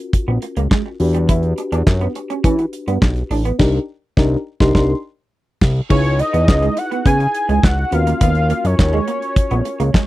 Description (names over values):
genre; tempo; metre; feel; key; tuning
early-eighties boogie funk; 104 BPM; 4/4; straight; unclear; A4 = 440 Hz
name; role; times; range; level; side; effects
mellow FM electric piano; accompaniment; 0.0-10.1 s; C#4 to C6; -23 LUFS; left 2 dB; chorus
damped 70s drum kit; drums; 0.1-10.1 s; crash cymbal, handclaps, hi-hat, kick drum, snare drum; -15 LUFS; equal; none
electric guitar through a small old amp; riff; 0.3-10.0 s; G3 to E4; -23 LUFS; right 6 dB; analog chorus
fat analog bass; bass; 0.3-9.9 s; A1 to E3; -17 LUFS; equal; none
fat analog lead; melody; 5.9-10.1 s; C#5 to G#5; -20 LUFS; equal; chorus
room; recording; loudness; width
little or no reverb; dry, close 1970s-style studio recording; -14 LUFS; side -16 dB against mid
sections
0.0-5.9 A section; 5.9-10.1 B section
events
band accent 3.6-5.9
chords
0.0 D#m9 (rootless); 1.0 Em9; 3.6 Cm9; 5.9 C#m9; 7.9 D#m9